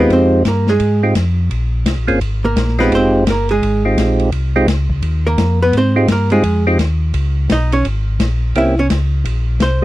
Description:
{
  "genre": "soul jazz organ trio",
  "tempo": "170 BPM",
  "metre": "4/4",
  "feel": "swing 63% on 8ths",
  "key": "F minor",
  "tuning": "A4 = 440 Hz",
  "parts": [
    { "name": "percussive tonewheel organ", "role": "melody", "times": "0.0-9.8 s", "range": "Ab3 to Ab4", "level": "-13 LUFS", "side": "right 1 dB", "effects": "slow rotary speaker" },
    { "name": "archtop guitar, miked and amplified", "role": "accompaniment", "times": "0.0-9.8 s", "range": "Ab3 to E5", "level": "-16 LUFS", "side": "right 2 dB", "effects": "none" },
    { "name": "mellow tonewheel organ", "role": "bass", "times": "0.0-9.8 s", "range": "F1 to Ab2", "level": "-16 LUFS", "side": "equal", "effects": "slow rotary speaker" },
    { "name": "open jazz drum kit", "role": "drums", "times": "0.1-9.7 s", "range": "hi-hat, kick drum, ride cymbal, snare drum", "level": "-22 LUFS", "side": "left 1 dB", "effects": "none" }
  ],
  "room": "little or no reverb",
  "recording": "dry, close 1970s-style studio recording",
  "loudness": "-12 LUFS",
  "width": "side -16 dB against mid",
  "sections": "0.0-9.8 A section",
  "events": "hollow-body jazz guitar solo 0.0-9.8",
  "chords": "0.0 Fm9; 1.5 Bb7sus2; 2.9 Fm9; 7.1 Db5; 8.6 C7b9",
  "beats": "| 0.10 0.45 0.80 1.15 | 1.51 1.86 2.21 2.56 | 2.92 3.27 3.62 3.97 | 4.33 4.68 5.03 5.38 | 5.74 6.09 6.44 6.79 | 7.14 7.50 7.85 8.20 | 8.55 8.90 9.25 9.61"
}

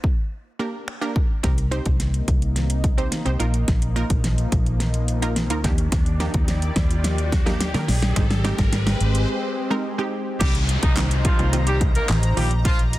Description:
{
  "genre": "dance-pop",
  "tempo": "107 BPM",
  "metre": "4/4",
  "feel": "straight",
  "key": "C minor",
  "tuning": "A4 = 440 Hz",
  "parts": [
    { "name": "wide unison pluck", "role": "accompaniment", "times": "0.0-13.0 s", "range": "Eb3 to C5", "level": "-28 LUFS", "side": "right 2 dB", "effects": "sidechain pumping" },
    { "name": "pop drum kit", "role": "drums", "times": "0.0-13.0 s", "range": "crash cymbal, finger snaps, handclaps, hi-hat, kick drum, snare drum", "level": "-22 LUFS", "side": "equal", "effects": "soft clipping on snare" },
    { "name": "lush unison pad", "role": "sustained chords", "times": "2.0-13.0 s", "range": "C3 to Bb5", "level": "-31 LUFS", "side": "left 1 dB", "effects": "chorus, sidechain pumping" },
    { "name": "vintage muted fingered electric bass", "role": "bass", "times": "1.4-12.9 s", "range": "Ab1 to Eb3", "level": "-22 LUFS", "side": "equal", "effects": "sidechain pumping" },
    { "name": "riser and downlifter", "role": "sound effects", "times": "3.9-13.0 s", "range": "none", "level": "-33 LUFS", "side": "equal", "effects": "none" },
    { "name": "warm horn section", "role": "melody", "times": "10.4-12.8 s", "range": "F3 to Eb5", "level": "-27 LUFS", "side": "equal", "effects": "sidechain pumping, digital delay" }
  ],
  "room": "digital ambience",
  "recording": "dense, heavily limited modern master",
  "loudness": "-19 LUFS",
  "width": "side -16 dB against mid",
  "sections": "0.0-1.4 A section; 1.4-10.4 B section; 10.4-13.0 C section",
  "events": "build-up 1.4-10.4; drum fill 1.4-9.3; riser 3.9-10.4; break 9.3-10.4; drop 10.4-13.0",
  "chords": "0.3 Gm; 1.4 Cm7; 3.4 Bbsus4; 5.6 Ebmaj7; 8.2 Abmaj7; 10.4 Cm7; 12.4 Bbsus4",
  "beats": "0.32 0.88 | 1.44 2.00 2.56 3.12 | 3.68 4.24 4.80 5.36 | 5.92 6.49 7.05 7.61 | 8.17 8.73 9.29 9.85 | 10.41 10.97 11.53 12.09 | 12.65"
}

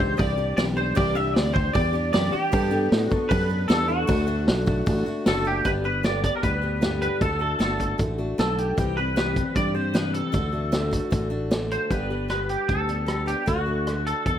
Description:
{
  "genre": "honky-tonk and classic country",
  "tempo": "153 BPM",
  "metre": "4/4",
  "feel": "straight",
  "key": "G major",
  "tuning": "A4 = 440 Hz",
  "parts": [
    { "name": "twangy electric guitar", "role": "melody", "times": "0.0-14.4 s", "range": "F#4 to E5", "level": "-27 LUFS", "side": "right 1 dB", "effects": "ensemble chorus" },
    { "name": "picked steel-string acoustic guitar", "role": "accompaniment", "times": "0.0-14.4 s", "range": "G2 to A4", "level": "-28 LUFS", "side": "left 2 dB", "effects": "none" },
    { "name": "fingered electric bass", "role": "bass", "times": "0.0-14.4 s", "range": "F#1 to A2", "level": "-27 LUFS", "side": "equal", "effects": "none" },
    { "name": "vintage drum kit", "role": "drums", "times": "0.0-14.3 s", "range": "hi-hat, kick drum, rim click, snare drum", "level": "-26 LUFS", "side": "equal", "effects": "none" }
  ],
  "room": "light reverb",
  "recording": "none",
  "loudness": "-21 LUFS",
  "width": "side -10 dB against mid",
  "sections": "0.0-5.7 A section; 5.7-11.9 B section; 11.9-14.4 C section",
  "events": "none",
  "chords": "0.0 Cadd9; 2.5 Gadd9; 4.1 D; 5.7 G; 7.2 D; 8.8 C; 10.3 D; 11.9 G; 13.5 D",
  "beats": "0.19 0.58 | 0.97 1.36 1.75 2.14 | 2.53 2.92 3.31 3.70 | 4.09 4.48 4.87 5.26 | 5.65 6.04 6.43 6.82 | 7.21 7.61 8.00 8.39 | 8.78 9.17 9.56 9.95 | 10.34 10.73 11.13 11.52 | 11.91 12.30 12.69 13.08 | 13.48 13.87 14.26"
}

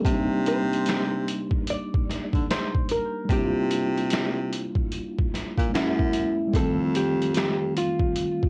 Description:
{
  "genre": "lo-fi hip hop",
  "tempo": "74 BPM",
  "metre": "4/4",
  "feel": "swing 63% on 16ths",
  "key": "C dorian",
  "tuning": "A4 = 440 Hz",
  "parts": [
    { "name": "mellow tine electric piano", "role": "accompaniment", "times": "0.0-8.5 s", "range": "Eb3 to G4", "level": "-30 LUFS", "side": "equal", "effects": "cassette tape, low-pass filter" },
    { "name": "trip hop sampler-style drum kit", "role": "drums", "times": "0.0-8.5 s", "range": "finger snaps, hi-hat, kick drum, snare drum", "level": "-29 LUFS", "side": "equal", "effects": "cassette tape" },
    { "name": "mellow baritone saxophone", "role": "bass", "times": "0.1-8.0 s", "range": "F2 to D3", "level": "-30 LUFS", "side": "equal", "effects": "transformer saturation" },
    { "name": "hollow-body jazz guitar", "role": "melody", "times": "0.5-8.5 s", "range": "E4 to D5", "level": "-31 LUFS", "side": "equal", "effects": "low-pass filter, cassette tape, tape echo" }
  ],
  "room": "light reverb",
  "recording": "home recording on cassette",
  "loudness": "-25 LUFS",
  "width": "mono",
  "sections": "0.0-8.5 A section",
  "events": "none",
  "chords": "0.1 Cm9; 5.7 F#9; 6.5 F9",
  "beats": "| 0.05 0.86 1.67 2.48 | 3.29 4.10 4.92 5.73 | 6.54 7.35 8.16"
}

